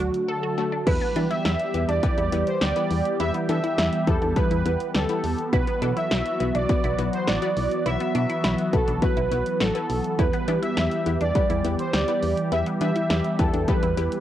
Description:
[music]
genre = synth-pop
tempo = 103 BPM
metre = 4/4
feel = straight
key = E minor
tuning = A4 = 439 Hz
[part]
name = analog synth brass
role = melody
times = 0.0-14.2 s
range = F#4 to E5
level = -26 LUFS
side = right 2 dB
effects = chorus
[part]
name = wide unison pluck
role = accompaniment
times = 0.0-14.2 s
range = A3 to D5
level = -32 LUFS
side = left 9 dB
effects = cassette tape
[part]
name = phased analog pad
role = sustained chords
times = 0.0-14.2 s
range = D3 to G4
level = -27 LUFS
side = equal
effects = phaser, chorus, cassette tape
[part]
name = resonant blip pluck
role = arpeggios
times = 0.0-14.1 s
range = B3 to A4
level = -34 LUFS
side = right 1 dB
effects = phaser, cassette tape, tape echo
[part]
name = solid FM bass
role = bass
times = 0.0-14.1 s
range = A1 to E3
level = -27 LUFS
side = equal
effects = none
[part]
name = punchy analog drum machine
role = drums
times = 0.1-14.2 s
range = crash cymbal, hi-hat, kick drum, snare drum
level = -26 LUFS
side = equal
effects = none
[sound]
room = light reverb, digital ambience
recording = home recording on cassette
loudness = -21 LUFS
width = side -12 dB against mid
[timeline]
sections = 0.9-14.2 A section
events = silent gap 0.3-0.9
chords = 0.0 D; 0.9 Em; 5.5 Bsus4; 10.2 Em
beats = 0.29 | 0.87 1.45 2.03 2.62 | 3.20 3.78 4.36 4.95 | 5.53 6.11 6.69 7.28 | 7.86 8.44 9.02 9.61 | 10.19 10.77 11.35 11.94 | 12.52 13.10 13.68

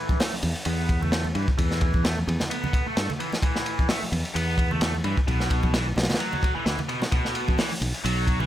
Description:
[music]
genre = breakbeat, breaks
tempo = 130 BPM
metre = 4/4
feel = swing 55% on 16ths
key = E minor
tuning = A4 = 440 Hz
[part]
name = tight distorted guitar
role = riff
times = 0.0-8.5 s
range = B2 to B3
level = -29 LUFS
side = equal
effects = distortion, overdrive, vintage 12-bit sampler grit, low-pass filter, ping-pong delay
[part]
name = crunchy breakbeat drum kit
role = drums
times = 0.1-8.4 s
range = hi-hat, kick drum, ride cymbal, snare drum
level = -25 LUFS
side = equal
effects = none
[part]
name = congas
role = percussion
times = 0.1-8.5 s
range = none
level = -34 LUFS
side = right 2 dB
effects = none
[part]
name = fingered electric bass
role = bass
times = 0.4-8.5 s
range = B1 to G2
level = -26 LUFS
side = equal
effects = none
[sound]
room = small room reverb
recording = faint mains hum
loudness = -22 LUFS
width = side -12 dB against mid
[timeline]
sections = 0.0-8.5 A section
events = filter sweep on distorted electric guitar 0.0-8.5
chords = 0.0 E5; 5.3 B5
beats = 0.20 0.66 1.12 | 1.58 2.04 2.51 2.97 | 3.43 3.89 4.35 4.81 | 5.28 5.74 6.20 6.66 | 7.12 7.58 8.04

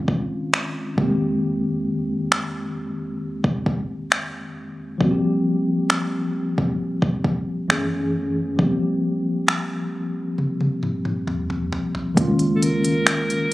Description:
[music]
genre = contemporary R&B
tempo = 67 BPM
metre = 4/4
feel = straight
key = F minor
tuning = A4 = 441 Hz
[part]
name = mellow tine electric piano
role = accompaniment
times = 0.0-13.5 s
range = F2 to Ab4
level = -22 LUFS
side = equal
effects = medium stereo tremolo
[part]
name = smooth R&B drum kit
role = drums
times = 0.1-13.5 s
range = finger snaps, hi-hat, kick drum, toms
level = -22 LUFS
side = equal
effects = overdrive
[part]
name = soft 808-style bass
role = bass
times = 12.2-13.5 s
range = Db2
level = -34 LUFS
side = equal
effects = none
[part]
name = breathy alto saxophone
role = melody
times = 12.6-13.5 s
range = A4 to Bb4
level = -24 LUFS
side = equal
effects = none
[sound]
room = light reverb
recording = recorded on a phone in the room, club reverb, compression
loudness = -20 LUFS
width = side -17 dB against mid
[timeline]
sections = 0.0-12.2 A section; 12.2-13.5 B section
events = drum fill 10.4-12.2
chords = 0.0 Dbmaj7; 1.0 Fm11; 5.0 C7sus4; 7.7 Gbm11; 8.6 C7sus4; 12.2 Db69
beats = 0.53 | 1.43 2.32 3.22 4.11 | 5.01 5.90 6.80 7.69 | 8.59 9.48 10.38 11.28 | 12.17 13.07

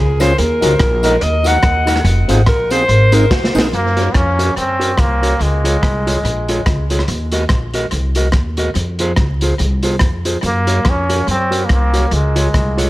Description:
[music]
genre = ska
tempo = 143 BPM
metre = 4/4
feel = swing 57% on 8ths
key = unclear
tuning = A4 = 443 Hz
[part]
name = breathy alto saxophone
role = melody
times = 0.0-3.6 s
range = Gb4 to Gb5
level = -17 LUFS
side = equal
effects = tape echo
[part]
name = upright bass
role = bass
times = 0.0-12.9 s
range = F1 to Gb2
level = -16 LUFS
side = equal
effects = none
[part]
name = mellow electric guitar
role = accompaniment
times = 0.2-12.9 s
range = Eb4 to Eb5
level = -22 LUFS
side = right 1 dB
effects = none
[part]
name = mellow tonewheel organ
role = stabs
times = 0.2-3.7 s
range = C4 to Bb4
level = -22 LUFS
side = left 2 dB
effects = chorus vibrato, slow rotary speaker, tape echo
[part]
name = crunchy breakbeat drum kit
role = drums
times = 0.2-12.9 s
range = hi-hat, kick drum, rim click, snare drum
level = -18 LUFS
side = equal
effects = tape echo
[part]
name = tambourine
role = percussion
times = 0.2-3.6 s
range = none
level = -35 LUFS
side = left 5 dB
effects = none
[part]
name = brilliant trombone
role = melody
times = 3.7-6.9, 10.5-12.9 s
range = Ab3 to Db4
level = -18 LUFS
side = equal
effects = tape echo
[sound]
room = light reverb, studio reverb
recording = vinyl crackle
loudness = -12 LUFS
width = side -17 dB against mid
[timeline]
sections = 0.0-3.7 A section; 3.7-12.9 B section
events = alto saxophone solo 0.0-3.7; drum fill 3.3-3.7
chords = 0.4 Ebm; 2.1 Fm; 2.9 Ab; 3.7 Gb; 5.4 Db; 7.1 Ebm; 8.8 Fm; 10.4 Gb; 12.1 Db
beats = | 0.38 0.80 1.22 1.64 | 2.06 2.48 2.90 3.31 | 3.73 4.15 4.57 4.99 | 5.41 5.83 6.25 6.67 | 7.09 7.51 7.92 8.35 | 8.76 9.18 9.60 10.02 | 10.44 10.86 11.28 11.70 | 12.12 12.54

